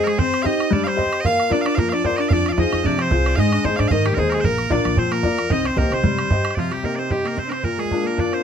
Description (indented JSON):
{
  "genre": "celtic folk, Celtic reel",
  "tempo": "225 BPM",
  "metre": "4/4",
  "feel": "swing 55% on 8ths",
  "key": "C minor",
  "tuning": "A4 = 439 Hz",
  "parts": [
    { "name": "loud bright bagpipes", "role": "melody", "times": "0.0-8.4 s", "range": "F4 to F5", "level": "-24 LUFS", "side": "right 4 dB", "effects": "none" },
    { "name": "rich fiddle", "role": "second line", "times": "0.0-8.4 s", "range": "F4 to F5", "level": "-29 LUFS", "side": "left 3 dB", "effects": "none" },
    { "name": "vintage hollow-body jazz guitar", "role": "second line", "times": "0.0-8.4 s", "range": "F3 to F4", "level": "-25 LUFS", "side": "right 2 dB", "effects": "none" },
    { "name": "bright upright piano", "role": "accompaniment", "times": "0.0-8.4 s", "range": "Bb2 to Eb5", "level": "-22 LUFS", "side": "left 5 dB", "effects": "none" },
    { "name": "bodhran", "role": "percussion", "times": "0.0-8.4 s", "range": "none", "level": "-24 LUFS", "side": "right 3 dB", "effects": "none" },
    { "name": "upright bass", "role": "bass", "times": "2.3-6.5 s", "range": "Bb1 to F3", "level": "-22 LUFS", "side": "equal", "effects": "none" }
  ],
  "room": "moderate studio reverb, RT60 0.6 s",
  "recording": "none",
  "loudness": "-17 LUFS",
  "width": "side -8 dB against mid",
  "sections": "0.0-6.6 A section; 6.6-8.4 B section",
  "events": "none",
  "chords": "0.2 Cm; 1.2 Bb; 2.3 Fm; 3.4 Ab; 4.4 Bb; 5.5 Cm; 7.6 Bb",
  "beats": "| 0.18 0.45 0.71 0.98 | 1.25 1.51 1.78 2.05 | 2.31 2.58 2.84 3.11 | 3.38 3.64 3.91 4.17 | 4.44 4.71 4.97 5.24 | 5.50 5.77 6.04 6.30 | 6.57 6.84 7.11 7.37 | 7.64 7.91 8.18"
}